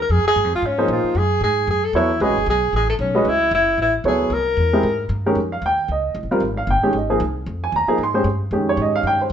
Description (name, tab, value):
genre	modal jazz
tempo	228 BPM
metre	4/4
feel	swing 58% on 8ths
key	F minor from 5.4 s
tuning	A4 = 440 Hz
part	mellow tenor saxophone	melody	0.0-5.1 s	Db4 to Bb4	-18 LUFS	equal	none
part	upright bass	bass	0.0-9.3 s	F1 to Bb2	-24 LUFS	left 1 dB	none
part	warm baby grand piano	accompaniment	0.8-9.3 s	Eb3 to C6	-19 LUFS	right 1 dB	none
room	moderate studio reverb, RT60 0.8 s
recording	band playing live in one room, nothing above 8.0 kHz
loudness	-17 LUFS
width	side -8 dB against mid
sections	0.0-5.4 A section; 5.4-9.3 B section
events	none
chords	0.0 Bbm9; 1.2 Gbm9; 4.3 C7b13; 5.4 Fm9